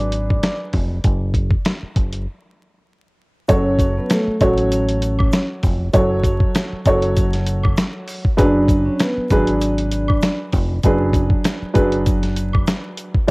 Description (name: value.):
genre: hip hop, boom-bap hip-hop.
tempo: 98 BPM.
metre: 4/4.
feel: swing 55% on 16ths.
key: unclear.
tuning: A4 = 440 Hz.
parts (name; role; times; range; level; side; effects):
vibraphone with soft mallets; melody; 0.0-13.3 s; A3 to D6; -22 LUFS; equal; high-pass filter, low-pass filter, cassette tape.
dark upright piano; accompaniment; 0.0-13.3 s; F#3 to C#5; -20 LUFS; right 1 dB; cassette tape, high-pass filter, low-pass filter.
deep dub fingered electric bass; bass; 0.0-12.6 s; E#1 to A1; -21 LUFS; equal; none.
dusty soul sampler-style drum kit; drums; 0.1-13.3 s; hi-hat, kick drum, snare drum; -18 LUFS; equal; cassette tape.
tube shaker and woodblock; percussion; 3.5-13.1 s; none; -32 LUFS; equal; none.
room: small room ambience.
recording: home recording on cassette, vinyl crackle.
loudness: -16 LUFS.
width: side -26 dB against mid.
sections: 0.0-3.5 A section; 3.5-13.3 B section.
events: break 2.3-3.5.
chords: 0.0 G#m7b5; 3.5 F#m; 8.4 G#m7b5.